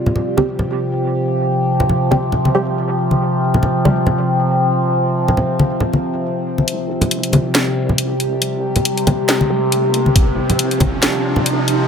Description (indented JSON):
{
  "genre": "deep dubstep",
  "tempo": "138 BPM",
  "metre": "4/4",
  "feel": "swing 56% on 16ths, half-time",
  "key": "unclear",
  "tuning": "A4 = 439 Hz",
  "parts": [
    { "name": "overtone-sweeping drone", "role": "sustained chords", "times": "0.0-11.9 s", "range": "C3 to G4", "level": "-17 LUFS", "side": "equal", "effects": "chorus, built-in reverb" },
    { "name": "congas", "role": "percussion", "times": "0.1-11.4 s", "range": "none", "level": "-17 LUFS", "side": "left 1 dB", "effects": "none" },
    { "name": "filtered dub chord stab", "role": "stabs", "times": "0.4-4.0, 7.3-10.9 s", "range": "G3 to G4", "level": "-22 LUFS", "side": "right 2 dB", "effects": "phaser, analog chorus, dub echo" },
    { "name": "deep soft wobble bass", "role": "bass", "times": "6.7-11.9 s", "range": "G1 to C2", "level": "-32 LUFS", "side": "equal", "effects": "none" },
    { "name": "garage drum kit", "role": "drums", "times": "6.7-11.8 s", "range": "hi-hat, snare drum", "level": "-18 LUFS", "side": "left 1 dB", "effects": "high-pass filter on hats, studio reverb, high-pass filter on snare" },
    { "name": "riser", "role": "sound effects", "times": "8.1-11.9 s", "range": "none", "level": "-25 LUFS", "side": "right 3 dB", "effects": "none" },
    { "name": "electronic kick drum", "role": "drums", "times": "10.2-10.9 s", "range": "none", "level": "-16 LUFS", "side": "equal", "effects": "studio reverb" }
  ],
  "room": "moderate spring reverb, RT60 1.9 s, digital ambience",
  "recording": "none",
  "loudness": "-14 LUFS",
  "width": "side -7 dB against mid",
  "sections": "0.0-6.7 A section; 6.7-11.9 B section",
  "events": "build-up 6.7-11.9; riser 8.1-11.9",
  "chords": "0.0 C5"
}